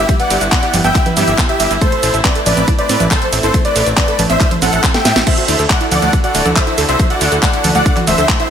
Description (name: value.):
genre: uplifting trance.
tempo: 139 BPM.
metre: 4/4.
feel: straight.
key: unclear.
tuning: A4 = 438 Hz.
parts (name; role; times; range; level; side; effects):
dense compressed supersaw; melody; 0.0-8.5 s; G4 to G5; -17 LUFS; equal; sidechain pumping, digital delay.
warm grand piano; second line; 0.0-8.5 s; C5 to G5; -22 LUFS; left 2 dB; sidechain pumping, digital delay.
rich studio string section; sustained chords; 0.0-8.5 s; D3 to A4; -22 LUFS; left 1 dB; sidechain pumping.
wide unison pluck; arpeggios; 0.0-8.4 s; F#3 to A5; -22 LUFS; right 5 dB; sidechain pumping, digital delay.
plucky analog bass; bass; 0.0-8.3 s; D1 to A2; -18 LUFS; equal; sidechain pumping.
electronic kick drum; drums; 0.1-8.4 s; none; -15 LUFS; equal; none.
house drum kit; drums; 0.1-8.5 s; congas, crash cymbal, handclaps, hi-hat, ride cymbal, shaker, snare drum; -16 LUFS; right 2 dB; none.
room: light reverb.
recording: none.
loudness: -11 LUFS.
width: side -8 dB against mid.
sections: 0.0-5.3 A section; 5.3-8.5 A section.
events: drop 0.0-5.3, 5.3-8.5; drum fill 4.9-5.3.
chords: 0.0 Em/G; 1.8 Am; 5.3 Dadd9.